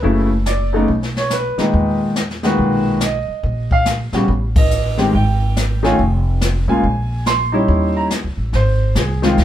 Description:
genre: jazz piano trio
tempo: 141 BPM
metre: 4/4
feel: swing 64% on 8ths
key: unclear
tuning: A4 = 441 Hz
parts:
  - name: clear concert grand piano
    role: melody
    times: 0.0-9.4 s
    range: Bb2 to C6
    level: -17 LUFS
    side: equal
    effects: none
  - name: upright bass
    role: bass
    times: 0.0-9.4 s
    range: F1 to E2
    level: -19 LUFS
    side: equal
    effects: none
  - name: jazz brush drum kit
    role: drums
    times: 0.0-9.4 s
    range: brushed snare drum, hi-hat, kick drum, ride cymbal, snare drum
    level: -20 LUFS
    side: left 1 dB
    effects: none
room: moderate small room reverb, RT60 0.5 s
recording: heard from further back in the room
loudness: -14 LUFS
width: side -11 dB against mid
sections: 0.0-8.5 A section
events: band accent 4.5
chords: 0.0 Gbm7; 0.9 B; 1.7 Emaj9#11; 3.4 N.C.; 4.3 A(b5, no3); 5.1 Ab5; 6.0 Fdim; 6.8 Bb7(no3); 7.7 Eb7b9; 8.5 Ab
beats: | 0.04 0.46 0.88 1.31 | 1.73 2.16 2.58 3.01 | 3.43 3.86 4.28 4.71 | 5.13 5.56 5.98 6.41 | 6.83 7.26 7.68 8.11 | 8.53 8.96 9.38

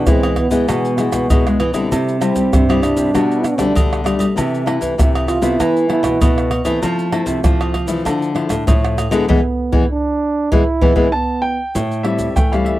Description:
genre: samba and choro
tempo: 98 BPM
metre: 4/4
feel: straight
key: unclear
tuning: A4 = 440 Hz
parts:
  - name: breathy trombone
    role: second line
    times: 0.0-11.6 s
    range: B3 to F4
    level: -19 LUFS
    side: right 3 dB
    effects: none
  - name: nylon-string guitar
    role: accompaniment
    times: 0.0-12.8 s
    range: G2 to E4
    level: -19 LUFS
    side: left 4 dB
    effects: none
  - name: nylon-string guitar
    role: bass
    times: 0.0-12.8 s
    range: A2 to A3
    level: -20 LUFS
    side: right 1 dB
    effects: none
  - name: tube shaker, surdo, pandeiro, tamborim and agogo bells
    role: percussion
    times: 0.1-12.8 s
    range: none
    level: -18 LUFS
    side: equal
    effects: none
  - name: warm grand piano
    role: melody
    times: 11.1-12.8 s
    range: E5 to A5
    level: -21 LUFS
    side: right 1 dB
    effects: none
room: little or no reverb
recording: dry, close 1970s-style studio recording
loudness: -14 LUFS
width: side -15 dB against mid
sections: 0.0-11.8 A section; 11.8-12.8 B section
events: trombone solo 0.0-11.8; band accent 9.3-11.8; drum fill 11.3-11.8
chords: 0.0 E; 1.9 C; 3.1 Gadd9/B; 4.4 Am/C; 5.6 Esus4; 6.8 Fmaj7; 8.1 Dmadd9; 9.3 E; 11.8 Am7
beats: 0.07 0.69 1.30 | 1.92 2.53 3.14 3.76 | 4.37 4.99 5.60 6.21 | 6.83 7.44 8.06 8.67 | 9.29 9.90 10.52 11.14 | 11.75 12.37

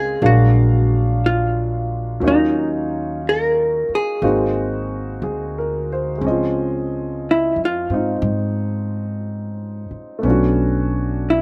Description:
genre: jazz ballad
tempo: 60 BPM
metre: 4/4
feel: swing 68% on 8ths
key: Db major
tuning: A4 = 440 Hz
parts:
  - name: vintage hollow-body jazz guitar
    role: melody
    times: 0.0-11.4 s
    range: Eb4 to Bb4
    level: -22 LUFS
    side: equal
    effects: slapback echo
  - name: clear upright piano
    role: accompaniment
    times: 0.0-11.4 s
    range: F3 to F5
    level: -24 LUFS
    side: equal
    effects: slapback echo
  - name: upright bass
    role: bass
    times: 0.0-11.4 s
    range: Ab1 to Ab2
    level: -23 LUFS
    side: equal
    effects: none
room: little or no reverb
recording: recorded outdoors, with no room sound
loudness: -19 LUFS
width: mono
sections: 0.0-6.2 A section; 6.2-11.4 B section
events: hollow-body jazz guitar solo 6.2-11.4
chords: 0.2 Bb7b13; 2.2 Ebm7; 4.2 Ab9; 6.2 Dbmaj7; 10.2 Cbm7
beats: 0.21 1.22 | 2.22 3.22 4.22 5.23 | 6.24 7.24 8.24 9.24 | 10.25 11.25

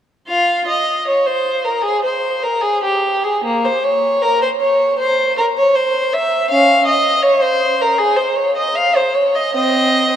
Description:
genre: classical, baroque-style suite movement for unaccompanied violin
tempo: 78 BPM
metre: 4/4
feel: uneven beats, rubato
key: unclear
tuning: A4 = 440 Hz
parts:
  - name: rich violin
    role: solo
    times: 0.3-10.2 s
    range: Bb3 to F5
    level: -13 LUFS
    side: equal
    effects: none
room: wet cathedral reverb, RT60 6.6 s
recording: none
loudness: -13 LUFS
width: side -10 dB against mid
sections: 0.3-10.2 A section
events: none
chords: none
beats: | 0.27 1.07 1.84 2.61 | 3.42 4.21 4.97 5.74 | 6.49 7.24 7.99 8.75 | 9.54

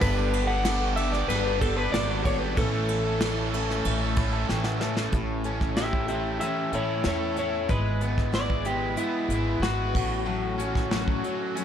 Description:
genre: folk rock and heartland rock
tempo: 94 BPM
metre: 4/4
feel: straight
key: A mixolydian, A major from 5.1 s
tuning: A4 = 441 Hz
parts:
  - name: electric guitar through a small old amp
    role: melody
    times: 0.0-10.9 s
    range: E4 to F#5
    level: -29 LUFS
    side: left 1 dB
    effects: digital delay
  - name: picked twelve-string acoustic guitar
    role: accompaniment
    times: 0.0-11.6 s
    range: A2 to A4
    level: -34 LUFS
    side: left 8 dB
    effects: none
  - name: warm concert grand piano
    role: accompaniment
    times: 0.0-5.1 s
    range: A3 to B5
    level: -39 LUFS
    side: right 2 dB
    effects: none
  - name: rich symphonic string section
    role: sustained chords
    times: 0.0-11.6 s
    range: G#3 to B4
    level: -38 LUFS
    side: right 2 dB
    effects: none
  - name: crunchy overdriven guitar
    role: riff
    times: 0.0-11.6 s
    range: G2 to B4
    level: -31 LUFS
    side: right 2 dB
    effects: none
  - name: upright bass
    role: bass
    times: 0.0-11.2 s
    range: G1 to E2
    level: -29 LUFS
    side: equal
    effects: none
  - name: soft brush drum kit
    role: drums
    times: 0.0-11.6 s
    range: crash cymbal, hi-hat, kick drum, ride cymbal, snare drum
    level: -30 LUFS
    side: right 1 dB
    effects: none
room: light reverb, small room reverb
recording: dark, warm production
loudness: -24 LUFS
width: side -9 dB against mid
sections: 0.0-5.1 A section; 5.1-11.6 B section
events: grand piano fill 3.9-5.1; drum fill 4.5-5.1; clean electric guitar solo 5.1-11.6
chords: 0.0 Gadd9; 2.6 A; 7.7 E/G#; 10.0 F#m/A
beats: | 0.02 0.66 1.29 1.93 | 2.57 3.21 3.85 4.49 | 5.13 5.78 6.42 7.06 | 7.70 8.34 8.99 9.63 | 10.27 10.92 11.56

